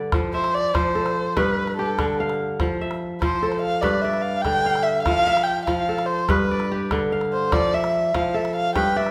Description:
west african traditional, West African string and xylophone music; 97 BPM (dotted quarters); 12/8; straight; F lydian; A4 = 440 Hz
kora; arpeggios; 0.0-9.1 s; G2 to F5; -26 LUFS; equal
calabash; percussion; 0.1-9.1 s; -30 LUFS; equal
dark erhu; melody; 0.3-9.1 s; A4 to G5; -25 LUFS; equal
wet recital hall reverb, RT60 1.4 s; -22 LUFS; mono
0.1-9.1 A section
erhu solo 0.1-9.1
0.1 F; 1.4 G; 2.6 F; 3.8 G; 5.1 F; 6.3 G; 7.5 F
| 0.13 0.74 1.36 1.98 | 2.60 3.21 3.83 4.45 | 5.06 5.68 6.29 6.91 | 7.53 8.14 8.76

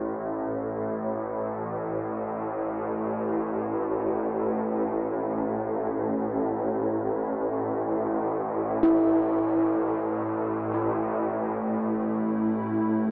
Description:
dark ambient drone; free time; A4 = 439 Hz
gamelan-type bossed gongs; arpeggios; 0.0-0.7, 8.8-11.0 s; G2 to E4; -29 LUFS; equal; tape echo
swarming drone; drone; 0.0-13.1 s; A1 to A2; -30 LUFS; equal; built-in reverb
dark analog pad; sustained chords; 11.3-13.1 s; A3 to E4; -29 LUFS; equal; chorus
wet huge ambient reverb, RT60 7.7 s; cassette tape, AM radio sound; -28 LUFS; mono
0.0-11.1 A section; 11.1-13.1 B section
filter sweep on synth drone 11.1-13.1
0.0 A5
free time

